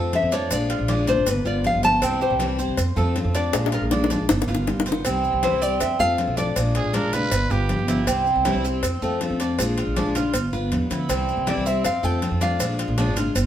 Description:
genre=latin, Cuban son and guajira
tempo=159 BPM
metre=4/4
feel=straight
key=C major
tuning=A4 = 438 Hz
part: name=picked steel-string acoustic guitar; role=accompaniment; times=0.0-13.4 s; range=C3 to F4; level=-27 LUFS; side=left 2 dB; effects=none
part: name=Cuban tres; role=arpeggios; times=0.0-13.5 s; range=C4 to D5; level=-28 LUFS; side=right 5 dB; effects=none
part: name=upright bass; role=bass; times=0.0-13.5 s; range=G1 to F2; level=-25 LUFS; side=right 1 dB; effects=none
part: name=congas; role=percussion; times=0.1-13.5 s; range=none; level=-32 LUFS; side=left 2 dB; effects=none
part: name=cowbell and bongos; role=percussion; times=0.1-13.5 s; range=none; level=-27 LUFS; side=left 2 dB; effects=none
part: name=maracas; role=percussion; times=0.1-13.5 s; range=none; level=-35 LUFS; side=right 5 dB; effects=none
part: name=nylon-string guitar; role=melody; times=0.2-7.5, 11.5-13.5 s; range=Bb4 to A5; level=-24 LUFS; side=left 2 dB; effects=none
part: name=growling trumpet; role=second line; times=6.8-8.3 s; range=G4 to B4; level=-27 LUFS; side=right 3 dB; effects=none
room=moderate stone room reverb, RT60 1.0 s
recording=band playing live in one room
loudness=-20 LUFS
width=side -10 dB against mid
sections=0.0-5.0 A section; 5.0-13.5 B section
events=nylon-string guitar solo 0.0-5.0; drum fill 3.5-5.0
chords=0.0 F; 0.5 Bb7; 1.3 G7; 2.0 C; 2.8 F; 3.5 Bb7; 4.3 G7; 5.0 C; 5.8 F; 6.6 Bb7; 7.3 G7; 8.1 C; 8.8 F; 9.6 Bb7; 10.3 G7; 11.1 C; 11.9 F; 12.6 Bb7

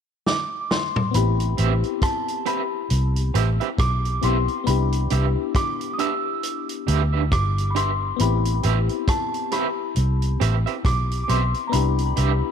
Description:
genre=lovers rock reggae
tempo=68 BPM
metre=4/4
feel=swing 59% on 16ths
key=A minor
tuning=A4 = 440 Hz
part: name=worn celesta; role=melody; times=0.3-12.5 s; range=A5 to E6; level=-28 LUFS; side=left 1 dB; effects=tape echo
part: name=vintage drum kit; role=drums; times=0.3-12.4 s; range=hi-hat, kick drum, rim click, snare drum, toms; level=-26 LUFS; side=right 1 dB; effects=none
part: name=FM electric piano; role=accompaniment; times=1.1-12.5 s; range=B3 to G4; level=-28 LUFS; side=left 13 dB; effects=chorus, slapback echo
part: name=vintage muted fingered electric bass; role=bass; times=1.1-12.4 s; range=G1 to D2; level=-21 LUFS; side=equal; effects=transformer saturation
part: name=electric guitar through a small old amp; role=stabs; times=1.6-12.3 s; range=C4 to E5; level=-28 LUFS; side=right 12 dB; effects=tremolo
room=light reverb, studio ambience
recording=1960s-style stereo with parts hard left and right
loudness=-20 LUFS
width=side -8 dB against mid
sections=0.0-1.1 A section; 1.1-12.5 B section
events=drum fill 0.3-1.1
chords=0.0 N.C.; 1.1 Am9; 4.7 Cmaj9; 8.2 Am9; 11.7 Cmaj9

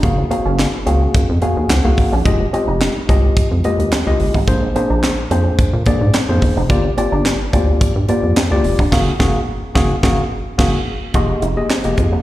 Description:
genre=early-eighties boogie funk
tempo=108 BPM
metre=4/4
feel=straight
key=F dorian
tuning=A4 = 439 Hz
part: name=mellow tine electric piano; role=accompaniment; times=0.0-12.1 s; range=Ab3 to Ab5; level=-19 LUFS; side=left 2 dB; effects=slapback echo
part: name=rubbery square bass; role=bass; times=0.0-12.2 s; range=Eb1 to Bb2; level=-17 LUFS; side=equal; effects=none
part: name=tight funk drum kit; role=drums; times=0.0-12.1 s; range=crash cymbal, handclaps, hi-hat, kick drum, snare drum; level=-17 LUFS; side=equal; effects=none
part: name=electric guitar with an envelope filter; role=riff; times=0.2-12.2 s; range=Bb3 to F4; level=-25 LUFS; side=right 2 dB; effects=analog chorus, slapback echo
room=light reverb, studio ambience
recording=live gig heard through the venue's PA, recital hall reverb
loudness=-13 LUFS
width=side -15 dB against mid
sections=0.0-11.1 A section; 11.1-12.2 B section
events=tine electric piano fill 1.1-2.3; band accent 8.9-11.1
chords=0.0 Gbmaj9; 2.3 Fm9; 4.5 Bb9; 6.7 Gm7; 8.9 Gbmaj9; 11.1 Fm11

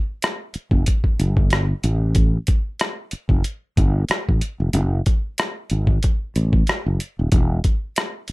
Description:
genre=R&B, neo-soul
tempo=93 BPM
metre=4/4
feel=swing 56% on 16ths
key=unclear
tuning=A4 = 439 Hz
part: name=boom bap sampler-style drum kit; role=drums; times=0.2-8.3 s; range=hi-hat, kick drum, rim click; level=-19 LUFS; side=equal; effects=none
part: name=fretless electric bass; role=bass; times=0.6-8.3 s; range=D#1 to A1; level=-19 LUFS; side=equal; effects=none
room=little or no reverb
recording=none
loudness=-18 LUFS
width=side -22 dB against mid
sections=0.0-8.3 A section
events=none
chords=none

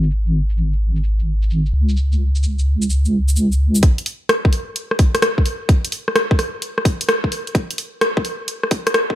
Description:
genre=UK garage, two-step garage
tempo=129 BPM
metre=4/4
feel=swing 67% on 16ths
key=unclear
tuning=A4 = 440 Hz
part: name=deep soft wobble bass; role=bass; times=0.0-3.8 s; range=G#1 to C#2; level=-15 LUFS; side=equal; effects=chorus
part: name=garage drum kit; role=drums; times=0.0-9.1 s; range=hi-hat, rim click, shaker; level=-20 LUFS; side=equal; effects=studio reverb
part: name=electronic kick drum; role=drums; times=3.8-9.2 s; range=none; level=-15 LUFS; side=equal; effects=studio reverb
room=light reverb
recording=dark, warm production, high-pass filter, low-pass filter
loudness=-16 LUFS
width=side -13 dB against mid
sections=0.0-3.8 A section; 3.8-9.2 B section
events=filter sweep 0.0-3.8; build-up 3.8-9.2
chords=none

